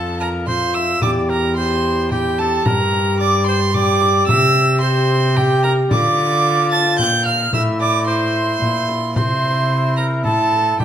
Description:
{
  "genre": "classical, renaissance-style consort dance",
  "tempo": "110 BPM",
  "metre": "3/4",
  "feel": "straight",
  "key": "unclear",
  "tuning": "A4 = 440 Hz",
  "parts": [
    { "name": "clear oboe", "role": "melody", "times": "0.0-10.8 s", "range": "G4 to A5", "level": "-24 LUFS", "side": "left 4 dB", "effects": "none" },
    { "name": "rich violin", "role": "second line", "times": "0.0-10.8 s", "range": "G5 to A6", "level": "-19 LUFS", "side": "right 4 dB", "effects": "none" },
    { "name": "clear trombone", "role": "accompaniment", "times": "0.0-10.8 s", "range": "D4 to G4", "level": "-21 LUFS", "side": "left 1 dB", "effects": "none" },
    { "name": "rich cello", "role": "bass", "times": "0.0-10.8 s", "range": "E2 to D3", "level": "-20 LUFS", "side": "equal", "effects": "none" },
    { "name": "frame drum", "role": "percussion", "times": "0.5-10.8 s", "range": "none", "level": "-23 LUFS", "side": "left 1 dB", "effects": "none" }
  ],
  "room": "moderate recital hall reverb, RT60 1.3 s",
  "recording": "minimal, uncompressed stereo recording, vinyl crackle",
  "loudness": "-14 LUFS",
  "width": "side -10 dB against mid",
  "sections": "0.0-10.8 A section",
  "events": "none",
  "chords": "0.0 F; 1.0 C/E; 2.7 Gm; 4.3 C; 5.9 Dm; 7.5 Am; 9.2 C"
}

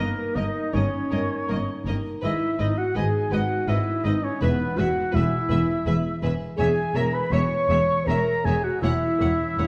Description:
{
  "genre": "classical, slow romantic movement for symphony orchestra",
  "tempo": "81 BPM",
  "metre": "3/4",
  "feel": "rubato",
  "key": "unclear",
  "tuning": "A4 = 440 Hz",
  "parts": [
    { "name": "clear chamber violin section", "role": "melody", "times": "0.0-9.7 s", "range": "D#5 to F#5", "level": "-41 LUFS", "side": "equal", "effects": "none" },
    { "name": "concert flute", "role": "second line", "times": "0.0-9.7 s", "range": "A#4 to C#6", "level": "-36 LUFS", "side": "equal", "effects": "none" },
    { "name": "rich chamber violin section", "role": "second line", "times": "0.0-9.7 s", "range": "A#4 to C#5", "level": "-40 LUFS", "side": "equal", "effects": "none" },
    { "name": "warm clarinet", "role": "second line", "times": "0.0-9.7 s", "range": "A#3 to C#5", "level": "-34 LUFS", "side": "equal", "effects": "none" },
    { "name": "warm oboe", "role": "second line", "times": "0.0-9.7 s", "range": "A#4 to C#6", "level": "-33 LUFS", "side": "equal", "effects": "none" },
    { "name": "warm studio viola section", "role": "accompaniment", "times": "0.0-9.7 s", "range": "G#3 to A#3", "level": "-37 LUFS", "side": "equal", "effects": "none" },
    { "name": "mellow French horn section", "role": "sustained chords", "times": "0.0-9.7 s", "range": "A#3 to C#5", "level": "-30 LUFS", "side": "equal", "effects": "none" },
    { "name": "concert harp", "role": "arpeggios", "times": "0.0-9.7 s", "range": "G2 to E5", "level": "-36 LUFS", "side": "equal", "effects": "none" },
    { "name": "warm chamber cello section", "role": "bass", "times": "0.0-9.7 s", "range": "E2 to G#2", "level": "-32 LUFS", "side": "equal", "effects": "none" },
    { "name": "warm chamber double bass section", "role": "bass", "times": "0.0-9.7 s", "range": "E1 to G#1", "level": "-30 LUFS", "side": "equal", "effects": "none" }
  ],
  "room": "wet scoring stage reverb, RT60 1.5 s",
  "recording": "vinyl crackle",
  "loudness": "-24 LUFS",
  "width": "mono",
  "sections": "0.0-9.7 A section",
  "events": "none",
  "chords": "0.0 D#7/G; 2.2 G#m; 4.4 E; 6.6 C#m/E; 8.8 F#7/E"
}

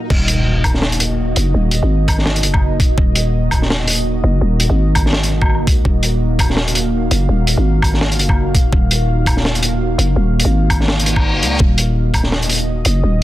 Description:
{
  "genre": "half-time drum and bass",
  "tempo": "167 BPM",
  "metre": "4/4",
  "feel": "swing 57% on 16ths, half-time",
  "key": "Eb minor",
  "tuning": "A4 = 440 Hz",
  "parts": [
    { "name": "deep dark ambient pad", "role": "sustained chords", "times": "0.0-13.2 s", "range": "Bb3 to F5", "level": "-22 LUFS", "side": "equal", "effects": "chorus, built-in reverb, sidechain pumping" },
    { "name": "swell, impact and reverse cymbal", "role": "sound effects", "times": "0.0-1.5, 11.0-11.6 s", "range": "none", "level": "-23 LUFS", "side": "left 1 dB", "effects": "none" },
    { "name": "growling 808-style bass", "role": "bass", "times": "0.1-13.2 s", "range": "Eb1 to Db2", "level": "-16 LUFS", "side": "equal", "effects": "tube saturation" },
    { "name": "crunchy breakbeat drum kit", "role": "drums", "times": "0.1-12.9 s", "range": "crash cymbal, hi-hat, snare drum, woodblock", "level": "-18 LUFS", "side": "equal", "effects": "none" },
    { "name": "electronic kick drum", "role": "drums", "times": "0.1-12.2 s", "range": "none", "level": "-15 LUFS", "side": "equal", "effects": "none" }
  ],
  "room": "small room ambience",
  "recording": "dense, heavily limited modern master",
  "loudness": "-13 LUFS",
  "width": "side -15 dB against mid",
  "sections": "0.1-13.2 A section",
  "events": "drop 0.1-13.2; impact 0.1-1.5; reverse cymbal 11.0-11.6; kick drops out 11.2-11.6",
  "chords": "0.1 Ebm"
}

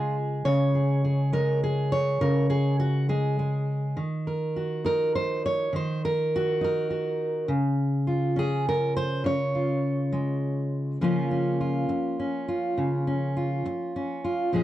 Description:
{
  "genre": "folk, solo fingerstyle acoustic guitar",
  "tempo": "68 BPM (dotted quarters)",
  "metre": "6/8",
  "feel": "straight",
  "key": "Db major",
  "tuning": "A4 = 440 Hz",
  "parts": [
    { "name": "fingerpicked steel-string acoustic guitar", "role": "solo", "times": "0.0-14.6 s", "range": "Bb2 to Db5", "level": "-24 LUFS", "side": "equal", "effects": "none" }
  ],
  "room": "moderate studio ambience, RT60 0.5 s",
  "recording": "dry, close 1970s-style studio recording",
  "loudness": "-24 LUFS",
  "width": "side -14 dB against mid",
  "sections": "0.0-11.0 A section; 11.0-14.6 B section",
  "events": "none",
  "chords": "0.0 Db5; 4.0 Ebm; 7.5 Dbmaj7; 9.2 Db; 11.0 Db6"
}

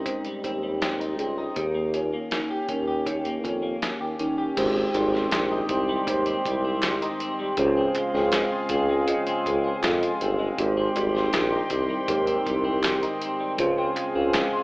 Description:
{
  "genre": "indie pop, bedroom pop",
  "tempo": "80 BPM",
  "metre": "4/4",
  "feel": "straight",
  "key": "unclear",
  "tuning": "A4 = 442 Hz",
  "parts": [
    { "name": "kalimba", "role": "second line", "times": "0.0-4.4 s", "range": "C4 to Db5", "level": "-35 LUFS", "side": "right 1 dB", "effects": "ensemble chorus, slapback echo" },
    { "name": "clean electric guitar", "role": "accompaniment", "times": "0.0-14.6 s", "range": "Ab2 to G4", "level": "-29 LUFS", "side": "left 1 dB", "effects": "analog chorus, vibrato effect" },
    { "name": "warm tuba", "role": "bass", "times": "0.0-14.4 s", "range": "G1 to Eb3", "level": "-26 LUFS", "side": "equal", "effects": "none" },
    { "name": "dusty soul sampler-style drum kit", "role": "drums", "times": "0.1-14.5 s", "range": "crash cymbal, hi-hat, kick drum, snare drum", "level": "-30 LUFS", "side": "equal", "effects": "none" },
    { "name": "mellow tine electric piano", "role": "accompaniment", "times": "4.6-14.6 s", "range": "Ab3 to Eb5", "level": "-29 LUFS", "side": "right 2 dB", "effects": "medium stereo tremolo" },
    { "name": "hollow soft pad", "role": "sustained chords", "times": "4.6-14.6 s", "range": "G4 to C6", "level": "-30 LUFS", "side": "equal", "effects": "chorus" },
    { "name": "group handclap", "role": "percussion", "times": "5.0-14.5 s", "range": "none", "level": "-35 LUFS", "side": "right 1 dB", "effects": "none" }
  ],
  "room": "light reverb",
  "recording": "rough home demo mix, AM radio sound",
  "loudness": "-22 LUFS",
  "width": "side -23 dB against mid",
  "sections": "0.0-4.6 A section; 4.6-14.6 B section",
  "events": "none",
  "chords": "0.0 Abmaj7; 1.6 Eb7; 4.6 Abmaj7; 7.6 Dbmaj7; 10.6 Abmaj7; 13.6 Dbmaj7"
}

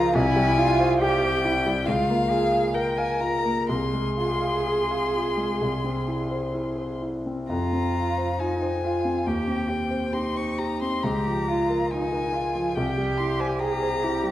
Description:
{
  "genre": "classical, slow romantic movement for piano trio",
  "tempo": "61-72 BPM",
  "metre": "4/4",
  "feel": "rubato",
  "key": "unclear",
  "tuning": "A4 = 440 Hz",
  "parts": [
    { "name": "clear violin", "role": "melody", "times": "0.0-14.3 s", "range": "F5 to Db6", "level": "-28 LUFS", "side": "left 4 dB", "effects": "none" },
    { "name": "rich cello", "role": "second line", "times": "0.0-14.3 s", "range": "C4 to Bb4", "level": "-28 LUFS", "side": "right 3 dB", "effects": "none" },
    { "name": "warm concert grand piano", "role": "accompaniment", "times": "0.0-14.3 s", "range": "C2 to F5", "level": "-25 LUFS", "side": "equal", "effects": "none" }
  ],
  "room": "wet recital hall reverb, RT60 1.3 s",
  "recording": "worn, warbling old tape, cassette tape, warbly pitch drift",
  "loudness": "-22 LUFS",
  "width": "side -13 dB against mid",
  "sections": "0.0-14.3 A section",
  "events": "none",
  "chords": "0.2 C; 1.9 Bbm/Db; 3.7 Fm/C; 5.6 C; 7.5 Fm; 9.3 Cm/Eb; 11.0 Bbm/Db; 12.8 C"
}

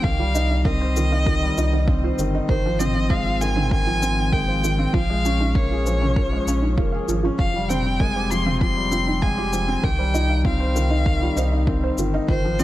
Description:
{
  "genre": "piano and strings electronica",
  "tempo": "98 BPM",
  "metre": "4/4",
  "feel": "straight",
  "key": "unclear",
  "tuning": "A4 = 438 Hz",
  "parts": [
    { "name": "rich violin", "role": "melody", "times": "0.0-12.6 s", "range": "C5 to C6", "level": "-26 LUFS", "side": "equal", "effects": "none" },
    { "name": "soft round pluck", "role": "arpeggios", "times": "0.0-12.6 s", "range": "Eb4 to F5", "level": "-32 LUFS", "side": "right 5 dB", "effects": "chorus, sidechain pumping, tape echo" },
    { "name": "felt-muted upright piano", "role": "riff", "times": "0.0-12.6 s", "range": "Eb3 to C5", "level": "-24 LUFS", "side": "left 1 dB", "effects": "none" },
    { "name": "warm sub bass", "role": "bass", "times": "0.0-12.6 s", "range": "F1 to C2", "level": "-23 LUFS", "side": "equal", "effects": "sidechain pumping" },
    { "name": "electronic kick drum", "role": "drums", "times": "0.0-12.4 s", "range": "none", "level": "-23 LUFS", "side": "equal", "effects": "none" },
    { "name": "electronic shaker and toms", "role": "drums", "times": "0.4-12.6 s", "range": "none", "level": "-30 LUFS", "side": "right 1 dB", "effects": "none" }
  ],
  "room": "digital ambience",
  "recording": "dark, warm production",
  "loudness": "-18 LUFS",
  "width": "side -15 dB against mid",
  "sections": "0.0-12.6 A section",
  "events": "none",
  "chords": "0.0 Cm; 2.5 Ab6; 4.9 Bbm7; 7.4 Fmadd9; 9.8 Cm"
}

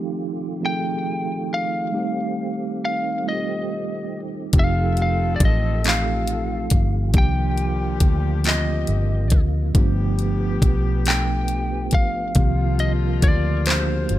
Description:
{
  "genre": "slow six-eight R&B",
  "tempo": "46 BPM (dotted quarters)",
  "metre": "6/8",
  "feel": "straight",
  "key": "C dorian",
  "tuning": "A4 = 440 Hz",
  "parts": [
    { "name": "mellow tine electric piano", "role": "accompaniment", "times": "0.0-14.2 s", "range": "Eb3 to Eb5", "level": "-27 LUFS", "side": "right 3 dB", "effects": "fast stereo tremolo" },
    { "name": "mellow tonewheel organ", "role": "sustained chords", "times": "0.0-14.2 s", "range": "Eb3 to G4", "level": "-33 LUFS", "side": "left 1 dB", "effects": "chorus vibrato, slow rotary speaker" },
    { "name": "lightly driven lead guitar", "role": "melody", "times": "0.7-14.2 s", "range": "C5 to G5", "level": "-27 LUFS", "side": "left 2 dB", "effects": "none" },
    { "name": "warm horn section", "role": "stabs", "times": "4.5-14.2 s", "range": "D3 to A4", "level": "-34 LUFS", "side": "left 9 dB", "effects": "none" },
    { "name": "vintage muted fingered electric bass", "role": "bass", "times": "4.5-14.2 s", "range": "F1 to D2", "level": "-22 LUFS", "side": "equal", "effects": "none" },
    { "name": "smooth R&B drum kit", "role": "drums", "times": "4.5-14.2 s", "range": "handclaps, hi-hat, kick drum", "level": "-18 LUFS", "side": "equal", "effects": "none" }
  ],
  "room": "digital ambience",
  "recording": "none",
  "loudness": "-19 LUFS",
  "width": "side -14 dB against mid",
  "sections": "0.0-14.2 A section",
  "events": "none",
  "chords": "0.0 F9; 1.9 Am7b5; 4.5 F9; 7.1 Cm11; 9.7 G7; 12.4 Cm11"
}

